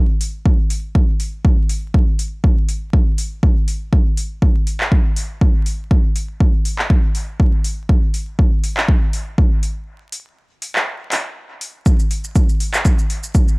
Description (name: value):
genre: techno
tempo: 121 BPM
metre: 4/4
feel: swing 55% on 16ths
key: none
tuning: none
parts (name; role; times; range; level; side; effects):
- deep house drum kit; drums; 0.2-13.6 s; handclaps, hi-hat, shaker; -23 LUFS; equal; overdrive, small room ambience
- electronic kick drum; drums; 0.5-13.5 s; none; -14 LUFS; equal; overdrive, small room ambience
room: digital ambience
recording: dry, gritty hardware recording, vinyl crackle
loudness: -15 LUFS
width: side -30 dB against mid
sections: 0.0-13.6 A section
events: break 9.9-11.9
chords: none